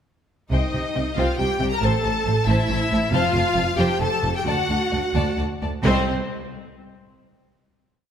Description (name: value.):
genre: cinematic, heroic adventure film score.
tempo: 128-138 BPM.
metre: 3/4.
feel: straight.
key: C dorian.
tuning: A4 = 439 Hz.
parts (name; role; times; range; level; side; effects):
bright symphonic violin section; melody; 0.5-6.1 s; C5 to Bb5; -26 LUFS; left 5 dB; none.
rich symphonic violin section; second line; 0.5-6.1 s; G4 to A5; -29 LUFS; left 3 dB; none.
rich symphonic viola section; accompaniment; 0.5-6.1 s; C4 to Bb4; -26 LUFS; right 1 dB; none.
rich symphonic cello section; bass; 0.5-6.1 s; C2 to C3; -26 LUFS; right 2 dB; none.
rich symphonic double bass section; bass; 0.5-6.1 s; F1 to D2; -25 LUFS; right 2 dB; none.
room: moderate scoring stage reverb, RT60 1.9 s.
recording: none.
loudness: -19 LUFS.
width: side -8 dB against mid.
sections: 0.5-5.9 theme; 5.9-7.2 final chord.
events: slowing down 2.5-5.9.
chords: 0.5 Cm; 1.8 Am; 3.1 F; 4.5 D; 5.9 N.C..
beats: | 0.51 0.95 1.39 | 1.83 2.26 2.70 | 3.13 3.57 4.01 | 4.46 4.92 5.38 | 5.85.